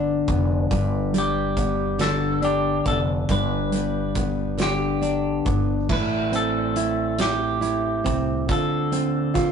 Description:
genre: six-eight pop ballad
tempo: 46 BPM (dotted quarters)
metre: 6/8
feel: straight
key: unclear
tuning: A4 = 440 Hz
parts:
  - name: nylon-string guitar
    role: accompaniment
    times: 0.0-9.5 s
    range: G2 to F4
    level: -23 LUFS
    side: equal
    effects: none
  - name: upright bass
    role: bass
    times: 0.0-9.5 s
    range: F1 to D2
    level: -28 LUFS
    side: equal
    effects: none
  - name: loose indie drum kit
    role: drums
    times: 0.3-9.5 s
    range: crash cymbal, hi-hat, kick drum, snare drum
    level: -28 LUFS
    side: equal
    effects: none
  - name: clean electric guitar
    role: melody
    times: 1.2-9.5 s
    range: G4 to B4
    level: -27 LUFS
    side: equal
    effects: none
room: light reverb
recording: rough rehearsal-room recording, tube saturation, nothing above 10.6 kHz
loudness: -20 LUFS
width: side -7 dB against mid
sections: 0.0-5.9 A section; 5.9-9.5 B section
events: none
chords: 0.0 G; 5.9 Am7; 8.5 Dm7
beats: | 0.71 2.00 | 3.29 4.59 | 5.89 7.19 | 8.49

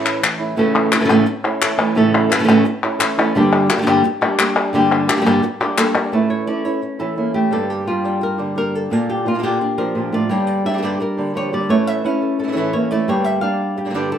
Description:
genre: flamenco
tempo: 173 BPM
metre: 4/4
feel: straight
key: A phrygian dominant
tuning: A4 = 439 Hz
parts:
  - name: flamenco guitar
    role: melody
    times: 0.0-14.2 s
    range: G2 to F5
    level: -17 LUFS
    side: equal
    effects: none
  - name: flamenco guitar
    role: stabs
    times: 0.0-14.2 s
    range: G2 to G4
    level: -24 LUFS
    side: right 3 dB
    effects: none
  - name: palmas hand claps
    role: percussion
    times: 0.1-6.1 s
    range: none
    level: -19 LUFS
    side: left 4 dB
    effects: none
room: moderate stone room reverb, RT60 0.9 s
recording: none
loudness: -15 LUFS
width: side -9 dB against mid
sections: 0.6-6.1 A section; 6.1-14.2 B section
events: none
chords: 0.0 A; 3.3 Gm; 6.1 A; 7.5 Gm; 8.9 Bb; 10.3 Gm; 11.7 A; 13.1 Gm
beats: 0.23 | 0.57 0.92 1.27 1.61 | 1.96 2.31 2.65 3.00 | 3.35 3.69 4.04 4.39 | 4.73 5.08 5.43 5.78 | 6.12 6.47 6.82 7.17 | 7.52 7.87 8.22 8.56 | 8.91 9.26 9.61 9.96 | 10.30 10.65 11.00 11.34 | 11.69 12.04 12.38 12.73 | 13.07 13.42 13.77 14.11

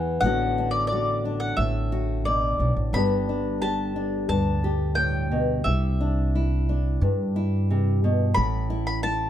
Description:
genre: acoustic folk duo or small band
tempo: 88 BPM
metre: 4/4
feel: straight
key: G major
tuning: A4 = 440 Hz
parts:
  - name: mandolin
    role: melody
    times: 0.0-9.3 s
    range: D5 to B5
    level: -28 LUFS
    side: left 1 dB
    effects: none
  - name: nylon-string guitar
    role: accompaniment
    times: 0.0-9.3 s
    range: E2 to G4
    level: -26 LUFS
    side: left 1 dB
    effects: none
  - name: upright bass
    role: bass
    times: 0.0-9.3 s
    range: G1 to G2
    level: -25 LUFS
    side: equal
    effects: none
room: little or no reverb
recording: close, detailed microphones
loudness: -22 LUFS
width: side -11 dB against mid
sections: 0.0-9.3 A section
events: none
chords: 0.2 D6/A; 2.9 Gadd9; 5.6 Cadd9; 8.4 A5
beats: | 0.22 0.90 1.58 2.25 | 2.93 3.61 4.29 4.97 | 5.65 6.33 7.00 7.68 | 8.36 9.04

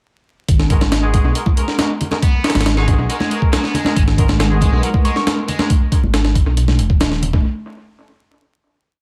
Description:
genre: breakbeat, breaks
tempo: 138 BPM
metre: 4/4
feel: straight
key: G# minor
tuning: A4 = 438 Hz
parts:
  - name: dark detuned saw bass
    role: bass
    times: 0.5-7.4 s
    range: D#1 to B1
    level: -19 LUFS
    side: equal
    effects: none
  - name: breakbeat sampler-style drum kit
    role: drums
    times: 0.5-7.4 s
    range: hi-hat, kick drum, snare drum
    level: -18 LUFS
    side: equal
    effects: analog delay
  - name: mellow horn section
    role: stabs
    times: 0.7-5.7 s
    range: G#3 to A#4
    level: -28 LUFS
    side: equal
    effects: vintage 12-bit sampler grit, analog delay
  - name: congas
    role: percussion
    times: 0.8-7.4 s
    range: none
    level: -27 LUFS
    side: equal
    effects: none
  - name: distorted electric guitar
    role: riff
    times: 2.2-5.7 s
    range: F#3 to D#4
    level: -29 LUFS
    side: equal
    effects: overdrive, analog delay
  - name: dark analog pad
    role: sustained chords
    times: 4.4-5.7 s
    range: G#3 to F#5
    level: -30 LUFS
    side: equal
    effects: chorus, vintage 12-bit sampler grit, sidechain pumping
  - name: soft synth bell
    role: melody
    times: 5.0-5.2 s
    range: C#6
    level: -28 LUFS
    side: equal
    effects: chorus, phaser, old record sound, analog delay
room: light reverb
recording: echo-heavy mix, vinyl crackle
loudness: -16 LUFS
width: mono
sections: 0.5-7.4 groove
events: none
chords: 0.5 G#m9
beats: | 0.48 0.92 1.35 1.79 | 2.22 2.66 3.09 3.53 | 3.96 4.40 4.83 5.27 | 5.70 6.14 6.57 7.01

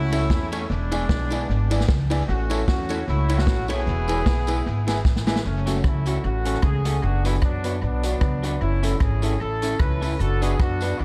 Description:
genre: ska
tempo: 152 BPM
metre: 4/4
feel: swing 56% on 8ths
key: unclear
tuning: A4 = 439 Hz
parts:
  - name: clear horn section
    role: melody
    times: 0.0-11.0 s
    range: F#3 to B4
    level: -30 LUFS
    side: equal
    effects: tape echo
  - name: upright bass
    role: bass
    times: 0.0-11.0 s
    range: E1 to F#2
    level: -26 LUFS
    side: equal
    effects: none
  - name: electric guitar through a small old amp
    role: accompaniment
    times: 0.1-10.9 s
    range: E3 to A4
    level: -34 LUFS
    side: equal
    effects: tape echo
  - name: warm upright piano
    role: stabs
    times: 0.1-10.9 s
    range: C#4 to D5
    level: -34 LUFS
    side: equal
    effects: tape echo
  - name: swinging big-band drum kit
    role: drums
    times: 0.1-10.9 s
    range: hi-hat, kick drum, ride cymbal, rim click, snare drum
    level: -27 LUFS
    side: equal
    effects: tape echo
  - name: tambourine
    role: percussion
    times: 0.1-10.9 s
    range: none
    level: -45 LUFS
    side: equal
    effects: tape echo
room: light reverb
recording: dark, warm production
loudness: -23 LUFS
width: mono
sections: 0.0-5.4 A section; 5.4-11.0 B section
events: drum fill 5.0-5.4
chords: 0.0 A; 0.7 E7; 2.3 A; 3.9 E; 5.4 F#m; 7.0 Bm/F#; 8.6 A/F#; 10.2 Bm/F#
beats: 0.30 | 0.70 1.09 1.49 1.88 | 2.28 2.67 3.07 3.47 | 3.86 4.26 4.65 5.05 | 5.44 5.84 6.24 6.63 | 7.03 7.42 7.82 8.22 | 8.61 9.01 9.41 9.80 | 10.20 10.60 10.99

